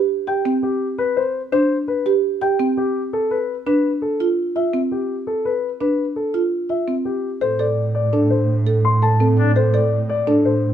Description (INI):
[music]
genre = classical, minimalist pattern music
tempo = 168 BPM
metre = 6/4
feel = straight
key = unclear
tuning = A4 = 439 Hz
[part]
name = marimba with soft mallets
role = arpeggios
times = 0.0-10.5 s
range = C4 to A4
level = -21 LUFS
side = right 3 dB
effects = none
[part]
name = dark grand piano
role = melody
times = 0.3-10.7 s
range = G4 to C6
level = -21 LUFS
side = left 4 dB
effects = none
[part]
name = warm studio double bass section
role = bass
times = 7.4-10.7 s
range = A2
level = -18 LUFS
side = right 2 dB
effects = none
[part]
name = pipe organ, foundations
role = accompaniment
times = 9.4-9.5 s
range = D4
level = -23 LUFS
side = left 7 dB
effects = none
[sound]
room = light reverb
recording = close, detailed microphones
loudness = -17 LUFS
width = side -10 dB against mid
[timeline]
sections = 0.0-7.4 A section; 7.4-10.7 B section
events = none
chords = 0.0 C5; 3.1 F(#11); 7.4 D5/A